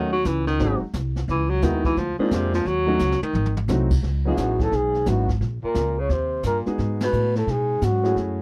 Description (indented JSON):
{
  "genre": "jazz, small-group swing and bop",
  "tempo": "175 BPM",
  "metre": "4/4",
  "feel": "swing 64% on 8ths",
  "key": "C# minor",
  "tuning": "A4 = 440 Hz",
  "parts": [
    { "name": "warm baritone saxophone", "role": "second line", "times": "0.0-8.2 s", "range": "F#2 to F#3", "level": "-28 LUFS", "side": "equal", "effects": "none" },
    { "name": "warm grand piano", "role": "accompaniment", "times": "0.0-8.4 s", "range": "F#3 to G#4", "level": "-28 LUFS", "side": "equal", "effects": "none" },
    { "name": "upright bass", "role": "bass", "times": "0.0-8.4 s", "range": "G#1 to B2", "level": "-27 LUFS", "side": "equal", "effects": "none" },
    { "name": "jazz brush drum kit", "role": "drums", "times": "0.2-8.4 s", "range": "brushed snare drum, crash cymbal, hi-hat, kick drum, ride cymbal, snare drum, toms", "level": "-30 LUFS", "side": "equal", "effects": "none" },
    { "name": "breathy flugelhorn", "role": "melody", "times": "4.3-8.2 s", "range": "F#4 to C#5", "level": "-26 LUFS", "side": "equal", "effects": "none" }
  ],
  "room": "little or no reverb",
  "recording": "dry, close 1970s-style studio recording",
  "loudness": "-23 LUFS",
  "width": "mono",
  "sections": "0.0-4.0 A section; 4.0-8.4 B section",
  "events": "baritone saxophone solo 0.0-4.0; drum fill 3.0-3.7; band accent 7.0",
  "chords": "0.0 D#m7b5; 0.6 G#7; 1.3 C#m11; 2.0 A#7; 2.7 D#m7b5; 3.3 G#7b9; 4.0 C#m11; 5.4 A#m; 6.1 D#; 6.8 G#m7"
}